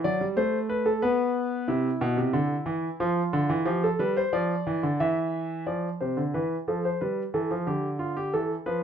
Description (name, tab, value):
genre	classical, baroque-style two-part invention for grand piano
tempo	91 BPM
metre	3/4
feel	straight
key	unclear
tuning	A4 = 438 Hz
part	clear concert grand piano	solo	0.0-8.8 s	B2 to E5	-24 LUFS	equal	none
room	light reverb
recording	minimal, uncompressed stereo recording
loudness	-24 LUFS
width	side -8 dB against mid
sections	0.0-5.7 A section; 5.7-8.8 B section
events	none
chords	0.0 D7; 1.0 N.C.; 1.7 C; 3.0 Dm/F; 3.7 G7(no3)/F; 5.0 N.C.; 5.7 F; 7.0 Em/G; 7.7 Dm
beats	0.38 1.03 | 1.68 2.34 3.00 | 3.66 4.32 4.99 | 5.66 6.33 6.99 | 7.66 8.32